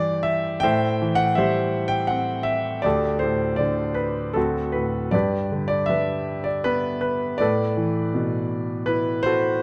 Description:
classical, lyrical solo piano; 81 BPM; 3/4; rubato; A4 = 439 Hz
warm concert grand piano; solo; 0.0-9.6 s; D2 to G5; -23 LUFS; equal
light reverb; -23 LUFS; mono
0.0-9.6 A section
0.0 C/G; 0.6 Am7; 2.9 Dsus4; 4.4 D7; 5.1 G; 7.4 Asus2

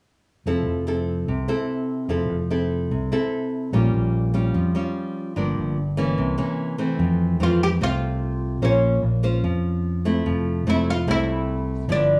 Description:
bossa nova; 147 BPM; 4/4; straight; F major; A4 = 437 Hz
nylon-string guitar; accompaniment; 0.5-12.2 s; F2 to C5; -27 LUFS; equal
fingered electric bass; bass; 0.5-12.2 s; F1 to F2; -25 LUFS; equal
oud; melody; 7.4-12.2 s; Db4 to G4; -26 LUFS; equal
light reverb; rough home demo mix, studio reverb; -23 LUFS; mono
0.5-7.0 A section; 7.0-12.2 B section
0.5 Fmaj7; 3.7 Bbm6; 5.4 Gm7; 6.2 C7b9; 7.0 Fmaj7; 8.6 Bbmadd9; 10.2 Fmaj7

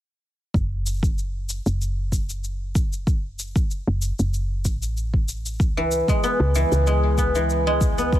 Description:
organic downtempo; 95 BPM; 4/4; swing 54% on 16ths; F# minor; A4 = 440 Hz
woody FM bass; bass; 0.5-8.2 s; F#1 to C#2; -24 LUFS; equal; sidechain pumping
electronic kick drum; drums; 0.5-8.2 s; -21 LUFS; equal
cabasa; drums; 0.6-8.2 s; -34 LUFS; left 2 dB
guzheng; arpeggios; 5.8-8.2 s; E3 to B3; -21 LUFS; equal; ping-pong delay
digital ambience; heavily compressed radio sound; -20 LUFS; side -13 dB against mid
0.5-8.2 A section
0.5 F#m; 5.6 C#m7

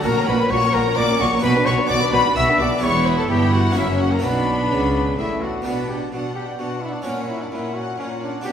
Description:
classical, baroque-style concerto movement with solo episodes; 129 BPM; 3/4; straight; B minor; A4 = 440 Hz
mellow trumpet; melody; 0.0-8.5 s; C#4 to E5; -23 LUFS; left 2 dB
rich studio violin section; melody; 0.0-8.5 s; C#5 to E6; -25 LUFS; left 4 dB
rich chamber violin section; second line; 0.0-8.5 s; C#4 to F#5; -26 LUFS; left 1 dB
harpsichord; accompaniment; 0.0-8.5 s; E2 to G4; -28 LUFS; right 1 dB
rich studio viola section; accompaniment; 0.0-8.5 s; A#3 to D4; -26 LUFS; right 2 dB
warm chamber double bass section; bass; 0.0-5.7 s; E1 to C#2; -27 LUFS; right 2 dB
warm chamber cello section; bass; 0.1-8.5 s; E2 to C#3; -25 LUFS; right 1 dB
wet recital hall reverb, RT60 1.4 s; heard from further back in the room; -17 LUFS; side -8 dB against mid
0.0-5.7 A section; 5.7-8.5 B section
0.1 F#/A#; 1.4 Bm; 2.8 Em; 3.8 F#7; 4.2 Bm; 7.1 F#/A#

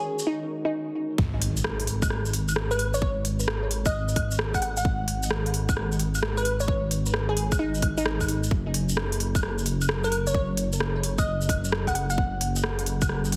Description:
future garage; 131 BPM; 4/4; swing 66% on 16ths; G# minor; A4 = 441 Hz
glassy wavetable pluck; melody; 0.0-12.6 s; D#4 to F#5; -33 LUFS; equal; chorus, digital delay
garage drum kit; drums; 0.2-13.4 s; claves, hi-hat, rim click, shaker; -31 LUFS; equal
dark detuned saw bass; bass; 1.2-13.4 s; F#1 to G#1; -30 LUFS; equal; sidechain pumping
electronic kick drum; drums; 1.2-13.1 s; -30 LUFS; equal
impact; sound effects; 1.2-3.0 s; -37 LUFS; equal
digital ambience; heavily compressed radio sound, multiband compression; -26 LUFS; mono
0.0-1.2 A section; 1.2-13.4 B section
filter sweep 0.0-1.2; impact 1.2-3.0
0.0 G#9sus4; 1.2 G#5; 8.5 N.C.

